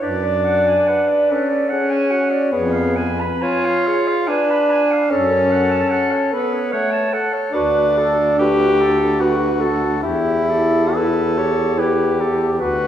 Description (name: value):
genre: classical, lyrical piece for single-reed quartet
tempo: 64-77 BPM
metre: 3/4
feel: rubato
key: F# minor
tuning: A4 = 439 Hz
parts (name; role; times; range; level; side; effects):
- mellow soprano saxophone; melody; 0.0-12.9 s; F#4 to D5; -24 LUFS; left 4 dB; none
- warm clarinet; second line; 0.0-12.9 s; E4 to B5; -23 LUFS; right 4 dB; none
- warm tenor saxophone; accompaniment; 0.0-12.9 s; A3 to A4; -18 LUFS; equal; none
- clear baritone saxophone; bass; 0.0-12.9 s; D2 to F#2; -22 LUFS; right 1 dB; none
room: wet recital hall reverb, RT60 1.6 s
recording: heard from further back in the room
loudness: -15 LUFS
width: side -10 dB against mid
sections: 0.0-12.9 A section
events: none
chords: 0.0 G#m7b5/F#; 2.5 C#7/E#; 5.1 F#m; 7.5 D; 10.0 Em